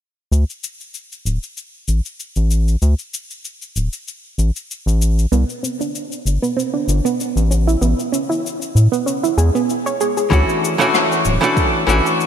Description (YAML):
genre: sunset chillout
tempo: 96 BPM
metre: 4/4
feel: swing 54% on 16ths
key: D lydian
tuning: A4 = 440 Hz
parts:
  - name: round analog bass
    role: bass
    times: 0.3-12.0 s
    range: D1 to A2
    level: -14 LUFS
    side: equal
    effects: none
  - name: cabasa and rim click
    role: drums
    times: 0.3-12.3 s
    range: none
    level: -28 LUFS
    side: left 4 dB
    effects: gated reverb
  - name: soft round pluck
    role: arpeggios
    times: 5.3-10.3 s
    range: B3 to C#5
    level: -20 LUFS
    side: right 4 dB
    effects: chorus, ping-pong delay
  - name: archtop guitar, miked and amplified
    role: accompaniment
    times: 10.3-12.3 s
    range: E3 to F#4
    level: -15 LUFS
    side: left 1 dB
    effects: auto-pan, ping-pong delay
  - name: electronic kick drum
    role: drums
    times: 10.3-11.7 s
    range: none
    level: -19 LUFS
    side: equal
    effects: none
room: moderate lush hall reverb, RT60 2.8 s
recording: bright 1980s-style digital production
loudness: -16 LUFS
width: side -9 dB against mid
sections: 0.3-10.3 A section; 10.3-12.3 B section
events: filter sweep on analog synth bass 0.3-10.3; break 9.7-10.3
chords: 0.3 D5; 5.3 Csus2; 7.5 Amaj9; 10.3 Dmaj9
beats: | 0.32 0.94 1.57 2.19 | 2.82 3.44 4.07 4.69 | 5.32 5.94 6.57 7.19 | 7.82 8.44 9.07 9.69 | 10.32 10.94 11.57 12.19